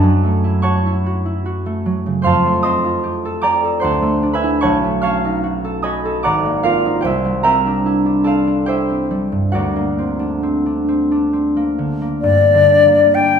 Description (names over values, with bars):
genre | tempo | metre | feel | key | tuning
classical, impressionist duo for flute and harp | 63-76 BPM | 3/4 | rubato | unclear | A4 = 440 Hz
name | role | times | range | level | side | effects
concert harp | accompaniment | 0.0-13.4 s | Ab1 to F6 | -15 LUFS | right 1 dB | none
mellow silver concert flute | melody | 12.2-13.4 s | D5 to G5 | -10 LUFS | left 4 dB | none
room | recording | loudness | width
wet recital hall reverb, RT60 1.6 s | recorded in a church or concert hall | -14 LUFS | side -7 dB against mid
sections
0.0-12.2 A section; 12.2-13.4 B section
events
none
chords
0.0 F#m7; 2.2 F9; 3.8 D9; 4.6 B9; 6.2 Ab9; 7.0 Cadd9; 9.5 Daug7; 12.2 Gm